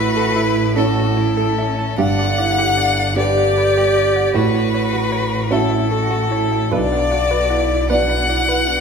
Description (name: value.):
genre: neoclassical piano and strings.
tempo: 51 BPM (dotted quarters).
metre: 6/8.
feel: rubato.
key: B minor.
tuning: A4 = 440 Hz.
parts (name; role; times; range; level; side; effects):
clear violin; melody; 0.0-8.8 s; A4 to F#5; -19 LUFS; left 5 dB; none.
clear cello; second line; 0.0-8.8 s; C#4 to G4; -22 LUFS; right 6 dB; none.
dark upright piano; accompaniment; 0.0-8.8 s; B1 to E5; -22 LUFS; right 4 dB; none.
hollow square pluck; arpeggios; 0.0-8.8 s; F#4 to B5; -26 LUFS; right 2 dB; chorus.
rich double bass; bass; 0.0-8.8 s; G1 to B1; -22 LUFS; left 1 dB; none.
room: wet large studio reverb, RT60 1.2 s.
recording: band playing live in one room.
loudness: -15 LUFS.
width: side -6 dB against mid.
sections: 0.0-8.8 A section.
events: none.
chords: 0.0 A; 2.0 Gmaj7; 4.3 F#m7/A; 6.7 Bm.